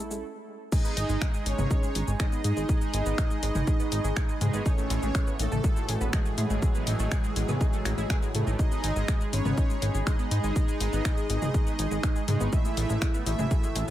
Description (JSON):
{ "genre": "melodic techno", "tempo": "122 BPM", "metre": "4/4", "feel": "straight", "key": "G# phrygian", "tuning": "A4 = 440 Hz", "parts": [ { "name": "wide unison lead", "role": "melody", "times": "0.0-13.9 s", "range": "G#3 to E4", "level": "-35 LUFS", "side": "equal", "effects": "wide subtle chorus, sidechain pumping, tape echo" }, { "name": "deep dark ambient pad", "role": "sustained chords", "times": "0.3-13.9 s", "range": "F#4 to E6", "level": "-41 LUFS", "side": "left 2 dB", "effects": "chorus, built-in reverb, sidechain pumping" }, { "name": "tight sequenced synth", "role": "arpeggios", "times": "0.0-13.9 s", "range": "F#3 to G#5", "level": "-38 LUFS", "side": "left 1 dB", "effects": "chorus, sidechain pumping, tape echo" }, { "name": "brassy analog pad", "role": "stabs", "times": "0.0-13.9 s", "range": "A2 to A4", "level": "-36 LUFS", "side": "right 4 dB", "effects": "analog chorus, cassette tape, sidechain pumping, tape echo" }, { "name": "plucky analog bass", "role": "bass", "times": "0.0-13.9 s", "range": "G#1 to A2", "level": "-28 LUFS", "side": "equal", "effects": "sidechain pumping" }, { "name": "house drum kit", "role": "drums", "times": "0.1-13.9 s", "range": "crash cymbal, finger snaps, hi-hat, shaker, toms", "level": "-34 LUFS", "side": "left 1 dB", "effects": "none" }, { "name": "soft supersaw", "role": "second line", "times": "0.7-13.9 s", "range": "G#4 to E5", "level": "-39 LUFS", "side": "right 1 dB", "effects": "sidechain pumping, tape echo" }, { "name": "electronic kick drum", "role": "drums", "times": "0.7-13.6 s", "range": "none", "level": "-26 LUFS", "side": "equal", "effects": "none" } ], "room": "digital ambience", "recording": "none", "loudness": "-24 LUFS", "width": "side -13 dB against mid", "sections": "0.7-13.9 A section", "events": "stop 0.2-0.7; drop 0.7-13.9", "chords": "0.0 A6; 0.7 G#m; 4.7 A6; 8.6 G#m; 12.5 A6", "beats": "0.23 | 0.72 1.22 1.71 2.20 | 2.69 3.18 3.67 4.17 | 4.66 5.15 5.64 6.13 | 6.62 7.12 7.61 8.10 | 8.59 9.08 9.58 10.07 | 10.56 11.05 11.54 12.04 | 12.53 13.02 13.51" }